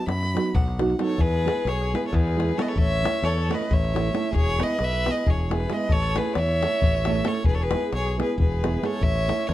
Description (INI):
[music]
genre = balkan folk, Balkan wedding band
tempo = 268 BPM (eighths)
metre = 7/8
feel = straight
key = unclear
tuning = A4 = 441 Hz
[part]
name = clear fiddle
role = melody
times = 0.0-9.5 s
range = B4 to B5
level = -28 LUFS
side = equal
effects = none
[part]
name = nylon-string guitar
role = accompaniment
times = 0.0-9.5 s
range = F#3 to A4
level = -28 LUFS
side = right 4 dB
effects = none
[part]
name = modern bright fingered electric bass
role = bass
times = 0.1-9.5 s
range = E1 to F#2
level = -26 LUFS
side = equal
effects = none
[part]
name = davul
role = percussion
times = 0.1-9.5 s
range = none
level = -26 LUFS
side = left 2 dB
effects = none
[part]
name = rich violin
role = second line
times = 1.0-9.5 s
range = G#4 to C#5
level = -30 LUFS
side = left 2 dB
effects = none
[sound]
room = light reverb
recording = dark, warm production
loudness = -21 LUFS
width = side -14 dB against mid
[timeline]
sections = 0.0-1.2 A section; 1.2-9.5 B section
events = fiddle solo 0.0-1.2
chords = 0.0 B; 1.2 E; 2.8 A; 4.3 E; 5.9 A; 7.5 E; 9.0 A